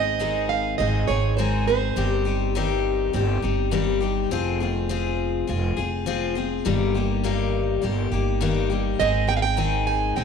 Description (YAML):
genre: acoustic folk duo or small band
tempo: 102 BPM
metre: 4/4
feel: straight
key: Ab major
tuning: A4 = 440 Hz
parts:
  - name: picked plugged-in steel-string acoustic guitar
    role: melody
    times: 0.0-2.8, 9.0-10.2 s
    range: C5 to Ab5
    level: -24 LUFS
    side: right 10 dB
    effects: none
  - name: picked steel-string acoustic guitar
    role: accompaniment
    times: 0.0-10.2 s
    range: G2 to Ab4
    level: -24 LUFS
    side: left 8 dB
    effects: none
  - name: upright bass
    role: bass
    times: 0.0-10.2 s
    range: F1 to Ab1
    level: -26 LUFS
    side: right 2 dB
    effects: none
room: moderate echo chamber reverb, RT60 2.0 s, studio reverb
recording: 1960s-style stereo with parts hard left and right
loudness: -21 LUFS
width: side -6 dB against mid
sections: 0.0-10.2 A section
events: none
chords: 0.0 Ab; 2.0 Cm/G; 4.3 Fm; 6.7 Eb/G; 9.0 Ab